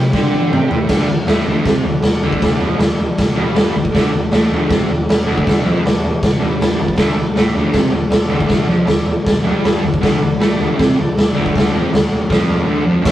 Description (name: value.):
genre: garage rock duo or trio.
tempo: 158 BPM.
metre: 4/4.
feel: straight.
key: D mixolydian.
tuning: A4 = 440 Hz.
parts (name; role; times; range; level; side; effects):
overdriven combo organ; sustained chords; 0.0-13.1 s; G4 to A5; -30 LUFS; left 1 dB; none.
fuzz guitar; riff; 0.0-13.1 s; D2 to D4; -17 LUFS; equal; distortion.
raw garage drum kit; drums; 0.1-13.1 s; crash cymbal, kick drum, snare drum, toms; -14 LUFS; equal; none.
room: light reverb.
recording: rough rehearsal-room recording.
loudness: -13 LUFS.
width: side -13 dB against mid.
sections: 0.9-13.1 A section.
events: drum fill 0.1-0.9; transistor combo organ fill 6.2-7.0, 12.5-13.1.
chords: 0.0 C5; 0.9 D.